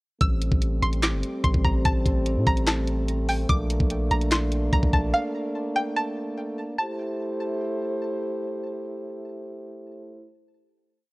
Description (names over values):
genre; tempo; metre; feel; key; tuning
hip hop, trap; 146 BPM; 4/4; half-time; A phrygian; A4 = 442 Hz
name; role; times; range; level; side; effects
string-like resonator pluck; melody; 0.2-8.0 s; F5 to E6; -27 LUFS; equal; chorus, digital delay
mellow French horn section; sustained chords; 0.2-10.3 s; G3 to C5; -29 LUFS; equal; none
long sustained 808-style bass; bass; 0.2-5.1 s; G1 to A2; -25 LUFS; equal; none
trap drum kit; drums; 0.2-5.0 s; handclaps, hi-hat, kick drum, snare drum; -24 LUFS; equal; none
room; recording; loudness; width
little or no reverb; worn, warbling old tape, cassette tape, warbly pitch drift; -22 LUFS; side -22 dB against mid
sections
0.2-6.8 hook; 6.8-10.1 final chord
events
none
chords
0.2 Am7; 3.5 Bbmaj7; 6.8 Am7